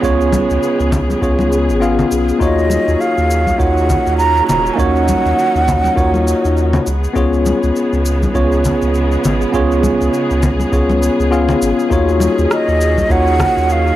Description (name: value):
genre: sunset chillout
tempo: 101 BPM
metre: 4/4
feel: swing 58% on 16ths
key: Eb minor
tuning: A4 = 440 Hz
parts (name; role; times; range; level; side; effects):
- tine electric piano; accompaniment; 0.0-14.0 s; Bb3 to F5; -16 LUFS; moving between left 4 dB and right 4 dB; auto-pan, analog delay
- warm studio string section; sustained chords; 0.0-14.0 s; Db3 to Ab4; -23 LUFS; equal; none
- warm sub bass; bass; 0.0-13.9 s; Eb1 to Eb2; -17 LUFS; equal; none
- electronic cabasa and rim click; drums; 0.0-14.0 s; none; -28 LUFS; equal; none
- electronic kick drum; drums; 0.0-13.5 s; none; -21 LUFS; equal; overdrive
- congas; percussion; 0.3-13.5 s; none; -20 LUFS; left 2 dB; none
- breathy mellow silver concert flute; melody; 2.4-6.9, 12.5-14.0 s; Eb5 to Bb5; -17 LUFS; right 2 dB; analog delay
room: light reverb, small room ambience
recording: dry, gritty hardware recording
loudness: -12 LUFS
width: side -14 dB against mid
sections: 0.0-14.0 A section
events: none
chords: 0.0 Db7; 2.4 Ebm9; 6.9 Db7; 11.9 Ebm9